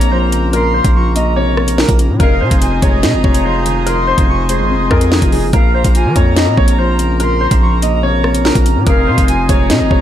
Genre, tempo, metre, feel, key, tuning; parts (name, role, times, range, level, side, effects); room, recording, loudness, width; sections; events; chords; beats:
hip hop, drill; 144 BPM; 4/4; half-time; A4 = 440 Hz
clear baby grand piano; melody; 0.0-10.0 s; Ab4 to Eb5; -19 LUFS; right 1 dB; wide subtle chorus, low-pass filter, analog delay
jazz flute; second line; 0.0-10.0 s; F5 to Db6; -21 LUFS; left 1 dB; analog delay
felt-muted upright piano; accompaniment; 0.0-10.0 s; F2 to C4; -19 LUFS; left 3 dB; lush chorus, low-pass filter
accordion; sustained chords; 0.0-10.0 s; Bb2 to Bb4; -23 LUFS; right 2 dB; stereo widening
distorted 808-style bass; bass; 0.0-10.0 s; F1 to F3; -16 LUFS; equal; distortion
drill drum kit; drums; 0.0-10.0 s; hi-hat, kick drum, rim click, snare drum; -13 LUFS; equal
light reverb, small room reverb; -10 LUFS; side -11 dB against mid
0.0-10.0 A section
0.0 Bbmadd9; 2.2 Fm7; 5.5 Bbmadd9; 8.9 Fm7
0.12 | 0.53 0.95 1.37 1.78 | 2.20 2.62 3.03 3.45 | 3.87 4.28 4.70 5.12 | 5.53 5.95 6.37 6.78 | 7.20 7.62 8.03 8.45 | 8.87 9.28 9.70